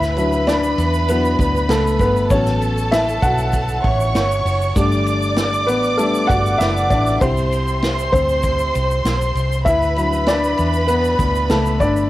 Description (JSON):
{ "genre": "piano-driven pop", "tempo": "98 BPM", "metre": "4/4", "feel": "straight", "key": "D major", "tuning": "A4 = 441 Hz", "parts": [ { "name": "warm studio violin section", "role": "second line", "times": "0.0-12.1 s", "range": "A4 to D6", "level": "-21 LUFS", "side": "right 1 dB", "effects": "plate reverb" }, { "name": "dark upright piano", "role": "accompaniment", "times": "0.0-12.1 s", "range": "F#3 to F#5", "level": "-19 LUFS", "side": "left 2 dB", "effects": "plate reverb" }, { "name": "vintage muted fingered electric bass", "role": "bass", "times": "0.0-12.1 s", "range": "F#1 to E2", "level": "-21 LUFS", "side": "equal", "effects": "none" }, { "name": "unplugged drum kit", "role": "drums", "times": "0.0-11.9 s", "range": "hi-hat, kick drum, ride cymbal, snare drum", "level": "-24 LUFS", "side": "equal", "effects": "none" }, { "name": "egg shaker", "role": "percussion", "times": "0.0-12.1 s", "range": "none", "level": "-39 LUFS", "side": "right 5 dB", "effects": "none" } ], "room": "light reverb", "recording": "home recording on cassette", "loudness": "-15 LUFS", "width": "side -15 dB against mid", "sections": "0.0-12.1 A section", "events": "upright piano solo 0.0-12.1", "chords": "0.0 Dadd9; 2.3 A6; 4.8 Gsus2; 7.2 C; 9.7 Dadd9", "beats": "0.47 1.09 1.70 | 2.31 2.92 3.54 4.15 | 4.76 5.37 5.99 6.60 | 7.21 7.82 8.44 9.05 | 9.66 10.27 10.88 11.50" }